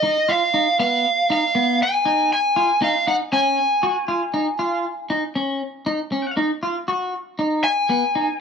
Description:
progressive instrumental, progressive; 118 BPM; 7/4; straight; G# dorian; A4 = 436 Hz
lead guitar through a small cranked amp; melody; 0.0-8.4 s; D#5 to G#5; -18 LUFS; equal; overdrive, plate reverb
clean electric guitar; arpeggios; 0.0-8.3 s; B3 to F#4; -23 LUFS; equal; lush chorus, plate reverb
moderate studio reverb, RT60 0.5 s; -18 LUFS; side -6 dB against mid
0.0-6.9 A section; 6.9-8.4 B section
0.0 G#m6/B; 3.3 C#add9; 6.9 G#m7

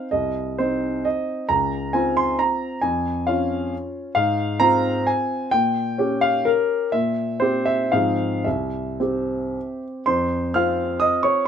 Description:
classical, romantic triple-time dance for piano with dotted rhythms; 105-141 BPM; 3/4; rubato; F minor from 4.2 s; A4 = 440 Hz
warm baby grand piano; solo; 0.0-11.5 s; C2 to F6; -20 LUFS; equal
light reverb; minimal, uncompressed stereo recording; -20 LUFS; side -8 dB against mid
0.0-10.1 A section; 10.1-11.5 B section
0.1 Cm; 1.5 Dbmaj7; 2.8 Db/F; 4.2 Fm/Ab; 5.5 Gdim/Bb; 6.9 C7/Bb; 7.9 Fm/Ab; 8.5 C; 10.1 F5

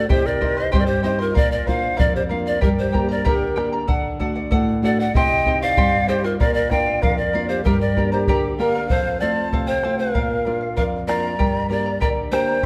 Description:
andean folk, Andean ensemble; 96 BPM; 2/4; straight; G minor; A4 = 444 Hz
pan flute; melody; 0.0-12.7 s; G4 to G5; -25 LUFS; equal
breathy bright large quena; second line; 0.0-12.7 s; F4 to Bb5; -29 LUFS; equal
charango; accompaniment; 0.0-12.7 s; G4 to C6; -28 LUFS; equal
nylon-string guitar; accompaniment; 0.0-12.6 s; F2 to G4; -26 LUFS; equal
bombo; percussion; 0.1-12.7 s; -25 LUFS; equal
wet recital hall reverb, RT60 1.4 s; -20 LUFS; mono
0.0-8.9 A section; 8.9-12.7 B section
0.1 Cm; 1.4 Bb; 2.6 Gm; 3.9 D; 5.1 Cm; 6.4 Bb; 7.7 Gm; 8.9 F; 10.2 Bb; 11.4 Gm

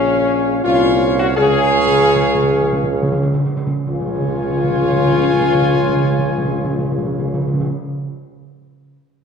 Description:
classical; 63-89 BPM; 3/4; straight; Db major; A4 = 440 Hz
warm trumpet section; melody; 0.0-7.7 s; Db5 to Ab5; -23 LUFS; right 2 dB
dark trombone section; sustained chords; 0.0-7.7 s; Bb2 to Db4; -24 LUFS; right 4 dB
warm French horn section; sustained chords; 0.0-7.7 s; Db4 to Ab4; -17 LUFS; left 4 dB
warm tuba; bass; 0.0-7.7 s; Bb1 to Db2; -22 LUFS; right 4 dB
timpani; percussion; 1.4-7.7 s; Db3; -20 LUFS; right 1 dB
wet scoring stage reverb, RT60 1.8 s; dark, warm production; -14 LUFS; side -6 dB against mid
0.0-3.9 A section; 3.9-9.2 B section
slowing down 0.0-3.9; timpani fill 1.4-3.9
0.0 Bbm; 1.4 Db

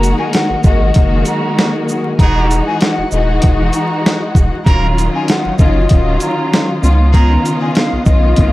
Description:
hip hop, boom-bap hip-hop; 97 BPM; 4/4; swing 55% on 16ths; F# major; A4 = 440 Hz
breathy mellow jazz flute; melody; 0.0-8.5 s; D#5 to A#5; -21 LUFS; left 1 dB; high-pass filter, low-pass filter, ping-pong delay
warm studio string section; accompaniment; 0.0-8.5 s; D#3 to F#4; -17 LUFS; left 1 dB; cassette tape, high-pass filter, low-pass filter
lush unison pad; sustained chords; 0.0-8.5 s; C#3 to F#5; -25 LUFS; right 1 dB; chorus, high-pass filter, low-pass filter
warm sub bass; bass; 0.0-8.5 s; D#1 to C#2; -14 LUFS; equal
boom bap sampler-style drum kit; drums; 0.0-8.5 s; hi-hat, kick drum, shaker, snare drum; -13 LUFS; equal
muted trumpet section; stabs; 2.2-7.3 s; A#3 to A#4; -28 LUFS; equal; high-pass filter, low-pass filter, ping-pong delay
studio reverb; dark, warm production, vinyl crackle; -11 LUFS; side -17 dB against mid
0.0-8.5 A section
0.0 F#69; 2.2 Emaj9; 4.7 D#m9; 6.8 C#9

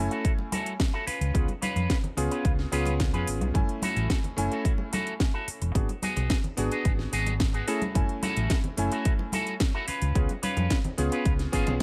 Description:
nu-disco, nu disco; 109 BPM; 4/4; straight; F# minor; A4 = 442 Hz
warm electric grand piano; accompaniment; 0.0-11.8 s; A3 to G#5; -34 LUFS; equal; sidechain pumping, dub echo
hollow-body short-scale fingered electric bass; bass; 0.0-11.8 s; E1 to E#2; -31 LUFS; equal
electric guitar with an envelope filter; riff; 0.1-11.7 s; B3 to B4; -35 LUFS; equal; lush chorus, low-pass filter, dub echo
house drum kit; drums; 0.1-11.8 s; hi-hat, snare drum; -36 LUFS; equal
electronic kick drum; drums; 0.2-11.8 s; -29 LUFS; equal
congas; percussion; 0.4-11.8 s; -38 LUFS; equal
little or no reverb; -27 LUFS; mono
0.0-11.8 A section
0.0 F#m7; 1.1 C#7; 3.5 F#m7; 5.8 G#m7b5; 7.7 F#m7; 9.9 C#7

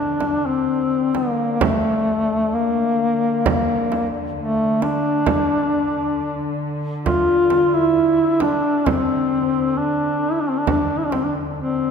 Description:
caucasian folk, Caucasian lament; 66 BPM; 4/4; rubato; D minor; A4 = 441 Hz
mellow duduk; melody; 0.0-11.9 s; A3 to F4; -18 LUFS; left 1 dB
dark studio string section; drone; 0.0-11.9 s; D3; -29 LUFS; left 2 dB
frame drum; percussion; 0.2-11.3 s; -25 LUFS; right 4 dB
wet church reverb, RT60 2.6 s; recorded in a church or concert hall; -17 LUFS; side -6 dB against mid
0.0-11.9 A section

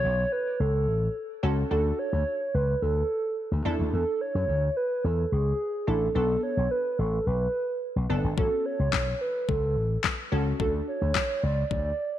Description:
dance-pop; 108 BPM; 4/4; straight; A major; A4 = 440 Hz
hollow clarinet-like synth lead; melody; 0.0-12.2 s; G#4 to D5; -28 LUFS; right 2 dB; chorus, tape echo
glassy wavetable pluck; accompaniment; 0.0-11.3 s; B3 to A4; -33 LUFS; equal; chorus
slap bass with an envelope filter; bass; 0.0-11.9 s; F#1 to F#2; -26 LUFS; left 1 dB; sidechain pumping
smooth R&B drum kit; drums; 8.4-11.8 s; handclaps, kick drum, snare drum; -29 LUFS; left 5 dB
light reverb; 1960s-style stereo; -24 LUFS; side -12 dB against mid
0.0-12.2 A section
0.0 A6; 1.7 D; 3.7 E7sus4; 6.2 Bm7; 8.4 A6; 10.6 D

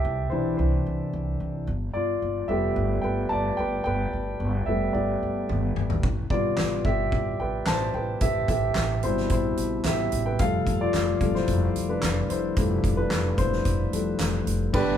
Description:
piano-driven pop; 110 BPM; 4/4; straight; A4 = 438 Hz
dark baby grand piano; accompaniment; 0.0-15.0 s; G2 to A5; -26 LUFS; left 1 dB
upright bass; bass; 0.0-15.0 s; E1 to C2; -28 LUFS; equal
loose indie drum kit; drums; 5.5-14.9 s; crash cymbal, handclaps, hi-hat, kick drum, snare drum, toms; -28 LUFS; equal
dark brass ensemble; sustained chords; 14.8-15.0 s; D3 to G4; -33 LUFS; right 3 dB
moderate large studio reverb, RT60 1.1 s; band playing live in one room; -23 LUFS; side -9 dB against mid
0.0-14.7 A section
grand piano solo 0.0-14.7; drum fill 5.5-6.0
0.0 Cadd9; 1.7 Gadd9; 6.0 Am7; 10.4 Fadd9

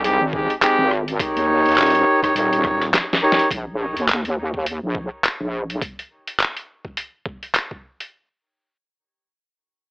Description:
glitch hop; 104 BPM; 4/4; swing 58% on 16ths; Bb dorian; A4 = 440 Hz
warm horn section; stabs; 0.0-3.5 s; Ab3 to Db5; -18 LUFS; equal; sidechain pumping, tape echo
wobble bass; bass; 0.0-5.8 s; Eb1 to Eb2; -24 LUFS; equal; chorus, tube saturation
boom bap sampler-style drum kit; drums; 0.0-8.1 s; handclaps, hi-hat, rim click, snare drum; -20 LUFS; equal
electronic kick drum; drums; 0.3-7.8 s; -31 LUFS; equal
light reverb; dry, gritty hardware recording, AM radio sound; -17 LUFS; side -31 dB against mid
0.0-3.5 A section; 3.5-8.1 B section
drop 0.0-3.5; drum fill 2.9-3.5
0.0 Abmaj7; 1.2 Eb7; 3.5 Bbsus4

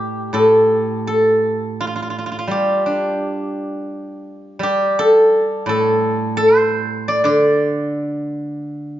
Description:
chinese traditional, Chinese solo plucked strings; 85 BPM; 4/4; rubato; A4 = 441 Hz
steel-string zither; solo; 0.0-9.0 s; A2 to D5; -15 LUFS; equal
light reverb; nothing above 7.5 kHz; -15 LUFS; side -12 dB against mid
0.0-9.0 A section

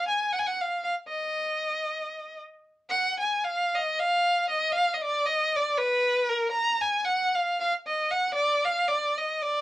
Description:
balkan folk; free time; Eb harmonic minor; A4 = 440 Hz
clear violin; solo; 0.0-9.6 s; Bb4 to Bb5; -24 LUFS; equal; cassette tape
light reverb; home recording on cassette; -24 LUFS; side -15 dB against mid
0.0-2.9 A section; 2.9-9.6 B section

